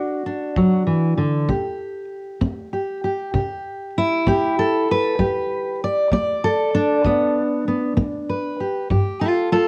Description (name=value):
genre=acoustic country blues, solo or duo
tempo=65 BPM (dotted quarters)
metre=12/8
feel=straight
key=G major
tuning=A4 = 440 Hz
part: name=fingerpicked steel-string acoustic guitar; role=melody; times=0.0-9.7 s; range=G2 to D5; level=-21 LUFS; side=equal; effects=cassette tape
part: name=kick drum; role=drums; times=0.6-9.1 s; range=none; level=-30 LUFS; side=equal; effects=cassette tape
room=moderate studio reverb, RT60 0.6 s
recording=home recording on cassette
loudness=-21 LUFS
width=mono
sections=0.0-9.7 A section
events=none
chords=0.0 D; 1.5 C; 5.2 G